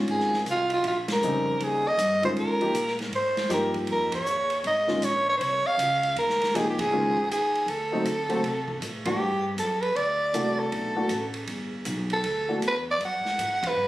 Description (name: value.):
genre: modal jazz.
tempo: 158 BPM.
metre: 4/4.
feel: swing 64% on 8ths.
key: Eb mixolydian, G major from 9.2 s.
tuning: A4 = 440 Hz.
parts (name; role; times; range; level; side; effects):
warm baby grand piano; accompaniment; 0.0-12.6 s; G2 to G4; -28 LUFS; left 1 dB; none.
upright bass; bass; 0.0-13.9 s; G1 to D3; -35 LUFS; equal; none.
growling soprano saxophone; melody; 0.1-13.9 s; F4 to F#5; -25 LUFS; right 1 dB; none.
open jazz drum kit; drums; 0.1-13.7 s; hi-hat, kick drum, ride cymbal, snare drum; -35 LUFS; right 2 dB; none.
room: light reverb.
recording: recorded on a phone in the room, studio reverb.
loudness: -23 LUFS.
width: side -16 dB against mid.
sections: 0.0-9.2 A section; 9.2-13.9 B section.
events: band accent 1.0, 4.1, 6.7, 9.0, 13.6.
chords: 0.0 Eb9sus4; 7.7 D7; 9.2 Gmaj9.